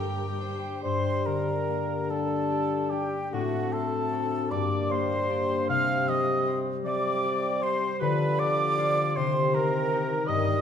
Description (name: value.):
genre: classical.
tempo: 43-54 BPM (dotted quarters).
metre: 6/8.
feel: rubato.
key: G minor.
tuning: A4 = 441 Hz.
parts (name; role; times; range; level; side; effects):
warm chamber violin section; melody; 0.0-0.6 s; G5; -45 LUFS; left 6 dB; none.
bright clarinet; second line; 0.0-10.6 s; F#4 to F5; -34 LUFS; equal; none.
mellow concert flute; second line; 0.0-10.6 s; F#5 to F6; -31 LUFS; equal; none.
mellow cor anglais; second line; 0.0-10.6 s; F#4 to F5; -34 LUFS; right 3 dB; none.
warm chamber violin section; second line; 0.0-0.8 s; Bb4 to C5; -43 LUFS; left 2 dB; none.
concert harp; arpeggios; 0.0-10.6 s; G2 to Bb4; -31 LUFS; left 7 dB; none.
dark chamber cello section; bass; 0.0-0.6 s; G2; -36 LUFS; right 3 dB; none.
mellow bassoon; accompaniment; 0.8-10.6 s; C3 to A3; -32 LUFS; right 3 dB; none.
mellow French horn section; sustained chords; 0.8-10.6 s; Eb3 to Bb4; -33 LUFS; left 4 dB; none.
room: wet recital hall reverb, RT60 1.4 s.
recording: none.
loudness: -24 LUFS.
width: side -8 dB against mid.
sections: 0.8-10.6 A section.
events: none.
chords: 0.0 Gm; 3.3 D7/A; 4.5 Gm; 5.7 C5; 8.0 G7/D; 9.2 Cm7.